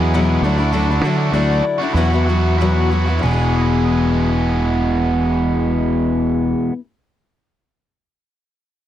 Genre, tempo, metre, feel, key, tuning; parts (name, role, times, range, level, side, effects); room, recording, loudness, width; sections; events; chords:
rock; 90-103 BPM; 4/4; straight; E mixolydian; A4 = 439 Hz
picked twelve-string acoustic guitar; accompaniment; 0.0-6.8 s; E2 to G#4; -19 LUFS; left 4 dB
biting overdriven guitar; riff; 0.0-6.7 s; E2 to G#4; -20 LUFS; right 3 dB
picked electric bass; bass; 0.0-6.5 s; E1 to D3; -18 LUFS; right 1 dB
light reverb; dry, close 1970s-style studio recording; -15 LUFS; side -12 dB against mid
0.0-3.2 A section; 3.2-5.9 B section
slowing down 0.0-3.2
0.4 Dadd9; 1.9 Esus2; 3.2 E